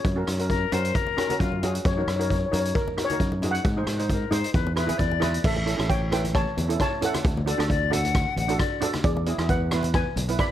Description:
calypso; 133 BPM; 4/4; swing 53% on 16ths; A4 = 441 Hz
steel pan; melody; 0.0-10.5 s; G#4 to B5; -29 LUFS; left 1 dB; plate reverb, analog delay
steel pan; accompaniment; 0.0-10.5 s; B3 to C5; -30 LUFS; right 3 dB; plate reverb
overdriven fingered electric bass; bass; 0.0-10.4 s; A1 to Ab2; -27 LUFS; equal
street-band drum kit; drums; 0.0-10.5 s; crash cymbal, hi-hat, kick drum, rim click; -27 LUFS; equal
bright concert flute; second line; 0.5-8.9 s; F4 to F#5; -28 LUFS; left 8 dB; plate reverb
congas; percussion; 0.7-10.3 s; -35 LUFS; left 3 dB
light reverb; -22 LUFS; side -11 dB against mid
0.0-5.5 A section; 5.5-10.5 B section
steel pan solo 0.0-5.5
0.0 Gb; 1.9 Ebm7/Gb; 3.7 Ab7; 4.6 E7; 5.5 A; 7.3 D; 9.1 E7
| 0.05 0.50 0.95 1.40 | 1.85 2.30 2.75 3.20 | 3.65 4.10 4.55 5.00 | 5.45 5.90 6.35 6.80 | 7.25 7.70 8.15 8.60 | 9.05 9.50 9.95 10.40

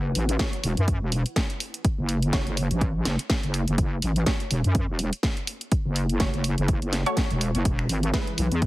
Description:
bass house; 124 BPM; 4/4; swing 57% on 16ths; F# minor; A4 = 440 Hz
wobble bass; bass; 0.0-8.7 s; E1 to F#2; -24 LUFS; equal; chorus, overdrive, sidechain pumping
garage drum kit; drums; 0.2-8.7 s; finger snaps, hi-hat, snare drum; -29 LUFS; equal
orchestra-hit-like synth stab; stabs; 0.4-8.3 s; G#3 to C#5; -33 LUFS; right 1 dB; built-in reverb, sidechain pumping, tape echo
electronic kick drum; drums; 0.4-8.7 s; -25 LUFS; equal; overdrive
sweeping resonant pad; sustained chords; 7.7-8.7 s; E3 to B4; -32 LUFS; left 2 dB; chorus, sidechain pumping
digital ambience; heavily compressed radio sound, multiband compression; -22 LUFS; side -18 dB against mid
0.0-8.7 A section
filter sweep on synth stab 0.0-8.7
0.0 F#m; 7.7 E
0.39 0.88 1.36 | 1.84 2.33 2.81 3.30 | 3.78 4.26 4.75 5.23 | 5.72 6.20 6.68 7.17 | 7.65 8.13 8.62

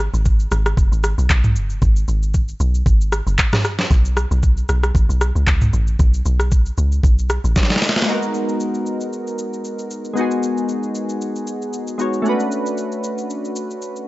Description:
amapiano; 115 BPM; 4/4; swing 55% on 16ths; G# minor; A4 = 440 Hz
deep log drum bass; bass; 0.0-7.5 s; F#1 to C#2; -17 LUFS; equal
smooth R&B drum kit; drums; 0.0-14.1 s; handclaps, hi-hat, kick drum, rim click, shaker, snare drum, toms; -18 LUFS; equal
glassy digital keys; accompaniment; 8.0-14.1 s; G#3 to C#5; -20 LUFS; left 1 dB; chorus
little or no reverb; nothing above 7.8 kHz; -16 LUFS; side -18 dB against mid
0.0-8.1 A section; 8.1-14.1 B section
drop 0.0-8.1; drum fill 7.6-8.1
0.0 G#m; 3.9 Bsus2; 8.1 G#m9; 12.3 Bm9
0.25 0.78 1.30 | 1.82 2.34 2.86 3.38 | 3.91 4.43 4.95 5.47 | 5.99 6.51 7.04 7.56 | 8.08 8.60 9.12 9.65 | 10.17 10.69 11.21 11.73 | 12.25 12.78 13.30 13.82

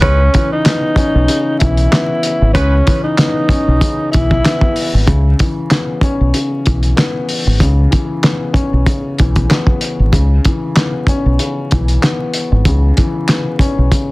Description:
hip hop, boom-bap hip-hop; 95 BPM; 4/4; swing 56% on 16ths; C# minor; A4 = 440 Hz
breathy tenor saxophone; melody; 0.0-5.0 s; C#4 to E4; -17 LUFS; equal; high-pass filter, low-pass filter, digital delay
dark upright piano; accompaniment; 0.0-14.1 s; C#3 to C#4; -19 LUFS; left 2 dB; cassette tape, high-pass filter, low-pass filter
warm horn section; stabs; 0.0-2.8 s; G#3 to B4; -25 LUFS; right 3 dB; high-pass filter, low-pass filter, digital delay
deep dub fingered electric bass; bass; 0.0-13.9 s; G#1 to C#2; -12 LUFS; equal
cloth-damped thuddy drum kit; drums; 0.0-14.1 s; handclaps, hi-hat, kick drum, snare drum; -14 LUFS; equal
little or no reverb; dense, heavily limited modern master, vinyl crackle; -11 LUFS; side -22 dB against mid
0.0-5.1 A section; 5.1-14.1 B section
0.0 C#m7
| 0.02 0.65 1.28 1.92 | 2.55 3.18 3.81 4.44 | 5.07 5.71 6.34 6.97 | 7.60 8.23 8.86 9.49 | 10.13 10.76 11.39 12.02 | 12.65 13.29 13.92

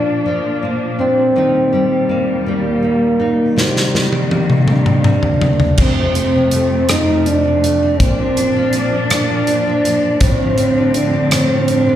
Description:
six-eight pop ballad; 54 BPM (dotted quarters); 6/8; straight; Bb major; A4 = 439 Hz
dark trombone; melody; 0.0-12.0 s; G3 to Eb4; -16 LUFS; right 1 dB; slapback echo
nylon-string guitar; accompaniment; 0.0-12.0 s; F2 to Eb4; -19 LUFS; left 1 dB; double-tracked left and right, slapback echo
warm studio string section; sustained chords; 0.0-12.0 s; Eb2 to D4; -21 LUFS; left 2 dB
modern studio drum kit; drums; 3.6-11.9 s; crash cymbal, hi-hat, kick drum, rim click, snare drum, toms; -16 LUFS; left 1 dB
light reverb, small room reverb; live gig heard through the venue's PA, recital hall reverb; -12 LUFS; side -11 dB against mid
0.0-5.8 A section; 5.8-12.0 B section
drum fill 3.6-5.8
0.0 Bb; 1.4 Eb; 3.6 Cm7; 5.8 F; 8.0 Bb; 10.2 Dm7/A
0.25 | 1.35 2.46 | 3.57 4.68 | 5.78 6.89 | 7.99 9.10 | 10.21 11.31

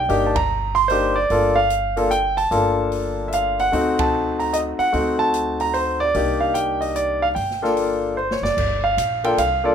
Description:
jazz piano trio; 148 BPM; 3/4; swing 65% on 8ths; G minor; A4 = 437 Hz
clear concert grand piano; melody; 0.0-9.7 s; A3 to C6; -18 LUFS; equal
upright bass; bass; 0.0-9.7 s; F#1 to D2; -28 LUFS; equal
open jazz drum kit; drums; 0.1-9.5 s; crash cymbal, hi-hat, kick drum, ride cymbal, snare drum; -31 LUFS; equal
light reverb, studio reverb; rough home demo mix; -18 LUFS; side -8 dB against mid
0.0-8.6 A section; 8.6-9.7 A section
band accent 0.3, 3.9; drum fill 8.2-8.6
0.0 Cm9; 3.7 D7b9; 6.1 Cm9; 7.4 Gm9; 8.6 Gm7
| 0.09 0.49 0.90 | 1.30 1.71 2.11 | 2.51 2.92 3.32 | 3.72 4.13 4.53 | 4.94 5.34 5.74 | 6.15 6.55 6.96 | 7.36 7.76 8.17 | 8.57 8.98 9.38

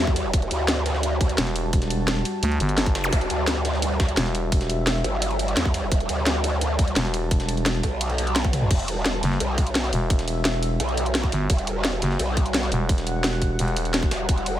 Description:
dark technical drum and bass; 172 BPM; 4/4; straight; E minor; A4 = 440 Hz
deep dark ambient pad; sustained chords; 0.0-14.6 s; G3 to A5; -29 LUFS; right 1 dB; chorus, built-in reverb, sidechain pumping
growl bass; bass; 0.0-14.6 s; E1 to E2; -25 LUFS; equal; chorus, overdrive, sidechain pumping
electronic kick drum; drums; 0.1-14.4 s; -22 LUFS; equal; small room reverb
breakbeat sampler-style drum kit; drums; 0.2-14.5 s; ride cymbal, snare drum; -34 LUFS; right 1 dB; high-pass filter on cymbals, small room reverb, high-pass filter on snare, high-pass filter on room
drum and bass drum kit; drums; 0.2-14.5 s; crash cymbal, hi-hat, snare drum, toms; -25 LUFS; equal; small room reverb
growling FM bass; bass; 1.4-14.1 s; E1 to D2; -24 LUFS; equal
zap; sound effects; 3.0-3.1 s; -30 LUFS; equal
little or no reverb; -20 LUFS; side -12 dB against mid
0.0-8.7 A section; 8.7-14.6 A section
drop 0.0-8.7, 8.7-14.6; drum fill 8.4
0.0 Emadd9
| 0.34 0.68 1.03 1.38 | 1.73 2.08 2.43 2.78 | 3.12 3.47 3.82 4.17 | 4.52 4.87 5.22 5.57 | 5.92 6.26 6.61 6.96 | 7.31 7.66 8.01 8.36 | 8.71 9.06 9.40 9.75 | 10.10 10.45 10.80 11.15 | 11.50 11.85 12.20 12.54 | 12.89 13.24 13.59 13.94 | 14.29

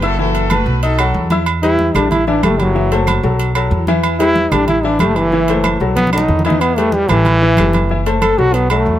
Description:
latin, salsa; 187 BPM; 4/4; straight; E minor; A4 = 444 Hz
brilliant horn section; melody; 0.0-1.3 s; F#4 to B4; -23 LUFS; equal
clear concert grand piano; accompaniment; 0.0-9.0 s; E3 to E6; -18 LUFS; left 4 dB
upright bass; bass; 0.0-9.0 s; F#1 to E2; -18 LUFS; right 1 dB
agogo bells; percussion; 0.0-8.9 s; -22 LUFS; right 6 dB
congas; percussion; 0.2-9.0 s; -21 LUFS; equal
claves; percussion; 0.5-8.9 s; -26 LUFS; right 6 dB
bright trombone; melody; 1.6-9.0 s; E3 to A4; -15 LUFS; equal
light reverb; -12 LUFS; side -12 dB against mid
0.0-1.5 A section; 1.5-9.0 B section
trombone solo 1.5-9.0; drum fill 6.0-6.6
0.2 F#m7; 0.8 B7; 1.5 Em; 2.1 A5; 2.8 F#m7b5; 3.4 B5; 4.0 Em; 4.7 A5; 5.3 F#m7b5; 6.0 B7; 6.6 Em; 7.3 A5; 7.9 F#m7b5
| 0.18 0.50 0.82 1.15 | 1.47 1.79 2.11 2.43 | 2.75 3.07 3.40 3.72 | 4.04 4.36 4.68 5.00 | 5.33 5.65 5.97 6.29 | 6.61 6.93 7.26 7.58 | 7.90 8.22 8.54 8.86

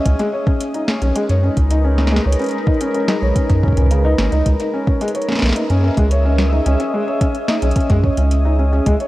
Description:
IDM; 109 BPM; 4/4; straight; C# dorian; A4 = 440 Hz
glassy FM pad; sustained chords; 0.0-9.1 s; G#3 to E5; -22 LUFS; equal; ensemble chorus, built-in reverb
felt-muted upright piano; arpeggios; 0.0-9.1 s; C#3 to C#5; -21 LUFS; left 1 dB; ping-pong delay
round analog bass; bass; 0.1-9.0 s; G#1 to F#2; -15 LUFS; equal
booming analog drum machine; drums; 0.1-9.1 s; hi-hat, snare drum; -24 LUFS; equal; overdrive, ping-pong delay
electronic kick drum; drums; 0.1-9.0 s; -17 LUFS; equal
light reverb, digital ambience; worn, warbling old tape, cassette tape, warbly pitch drift; -14 LUFS; side -17 dB against mid
0.0-9.1 A section
0.1 G#m; 4.5 C#madd9
| 0.06 0.61 1.16 1.71 | 2.26 2.81 3.36 3.91 | 4.46 5.01 5.56 6.11 | 6.66 7.21 7.76 8.31 | 8.86

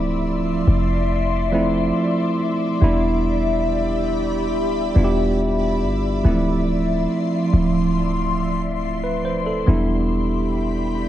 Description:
contemporary R&B; 70 BPM; 4/4; straight; D dorian; A4 = 440 Hz
tine electric piano; accompaniment; 0.0-11.1 s; E3 to C5; -21 LUFS; right 2 dB; overdrive
ethereal airy pad; sustained chords; 0.0-11.1 s; F3 to C6; -24 LUFS; left 2 dB; ensemble chorus, built-in reverb, phaser
warm 808-style bass; bass; 0.0-11.1 s; D1 to G1; -22 LUFS; equal
light reverb, digital ambience; worn, warbling old tape, cassette tape, warbly pitch drift; -18 LUFS; side -12 dB against mid
0.0-11.1 A section
0.0 Dm9; 2.8 Em7; 6.2 Dm9; 9.7 Em7
0.24 1.10 1.96 | 2.82 3.67 4.53 5.39 | 6.25 7.10 7.96 8.82 | 9.67 10.53

